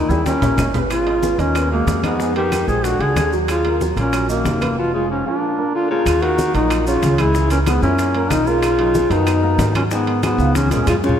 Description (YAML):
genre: Afro-Cuban jazz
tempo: 186 BPM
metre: 4/4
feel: straight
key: Eb minor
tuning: A4 = 439 Hz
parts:
  - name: warm duduk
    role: melody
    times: 0.0-11.2 s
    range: Bb3 to Ab4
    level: -19 LUFS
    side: equal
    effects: tape echo
  - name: mellow baritone saxophone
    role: second line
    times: 0.0-11.2 s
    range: Gb2 to F3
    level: -24 LUFS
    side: left 4 dB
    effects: none
  - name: dark baby grand piano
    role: accompaniment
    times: 0.0-11.2 s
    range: Eb3 to F#5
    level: -25 LUFS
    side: right 2 dB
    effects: ensemble chorus
  - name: upright bass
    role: bass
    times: 0.0-11.2 s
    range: F1 to Ab2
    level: -21 LUFS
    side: right 1 dB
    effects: none
  - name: congas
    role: percussion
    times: 0.1-11.2 s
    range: none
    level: -26 LUFS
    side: left 1 dB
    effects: none
  - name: maracas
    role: percussion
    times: 0.1-11.2 s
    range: none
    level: -35 LUFS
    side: right 4 dB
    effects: none
  - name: timbales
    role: percussion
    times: 0.1-11.0 s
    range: none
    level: -30 LUFS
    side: right 6 dB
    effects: none
  - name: bongos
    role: percussion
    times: 0.3-11.1 s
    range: none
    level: -30 LUFS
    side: left 7 dB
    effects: none
  - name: claves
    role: percussion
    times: 0.6-11.0 s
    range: none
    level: -35 LUFS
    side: right 4 dB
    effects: none
room: moderate lush hall reverb, RT60 2.3 s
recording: dreamy mix soaked in reverb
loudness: -15 LUFS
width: side -9 dB against mid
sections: 0.0-6.1 A section; 6.1-11.2 B section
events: drum fill 0.0-0.9, 10.6-11.2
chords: 0.0 Eb7; 0.9 Abm11; 2.2 Fm7b5; 2.8 Bb7alt; 3.5 Ebm9; 4.8 Db13b9/F; 5.4 Bb; 6.1 Ebm7; 7.3 Dbm; 8.0 Gb7; 8.6 Bmaj9; 9.9 Abm7; 10.6 Db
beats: 0.26 0.58 | 0.91 1.23 1.55 1.87 | 2.20 2.52 2.84 3.17 | 3.49 3.81 4.13 4.46 | 4.78 5.10 5.42 5.74 | 6.07 6.39 6.71 7.03 | 7.35 7.67 7.99 8.31 | 8.63 8.95 9.27 9.59 | 9.91 10.23 10.55 10.88 | 11.20